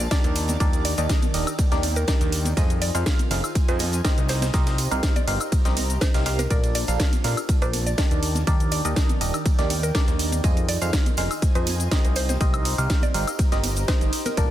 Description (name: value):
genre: piano house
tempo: 122 BPM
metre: 4/4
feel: swing 53% on 16ths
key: unclear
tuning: A4 = 440 Hz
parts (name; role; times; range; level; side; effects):
- mallet-like synth pluck; melody; 0.0-14.5 s; Bb4 to D5; -34 LUFS; left 1 dB; chorus, vintage 12-bit sampler grit, ping-pong delay
- fat analog bass; bass; 0.0-14.5 s; Eb1 to Bb2; -25 LUFS; equal; sidechain pumping
- house drum kit; drums; 0.0-14.5 s; hi-hat, shaker, snare drum, woodblock; -29 LUFS; equal; overdrive
- tambourine and congas; percussion; 0.0-14.5 s; none; -35 LUFS; right 1 dB; none
- airy breathy pad; texture; 0.0-14.5 s; Eb3 to Bb5; -34 LUFS; right 2 dB; chorus, sidechain pumping
- barking FM electric piano; riff; 0.1-14.5 s; D4 to F5; -29 LUFS; right 1 dB; chorus, phaser, tremolo, sidechain pumping, ping-pong delay
- breakbeat sampler-style drum kit; drums; 0.1-14.5 s; hi-hat, ride cymbal, snare drum; -38 LUFS; right 3 dB; none
- electronic kick drum; drums; 0.1-14.5 s; none; -22 LUFS; equal; overdrive
room: little or no reverb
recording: dense, heavily limited modern master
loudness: -20 LUFS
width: side -12 dB against mid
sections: 0.0-14.5 A section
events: none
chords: 0.4 Ebmaj7; 2.6 Fm7; 4.3 Cm7; 6.5 Bbmaj7; 8.2 Ebmaj7; 10.4 Fm7; 12.2 Cm7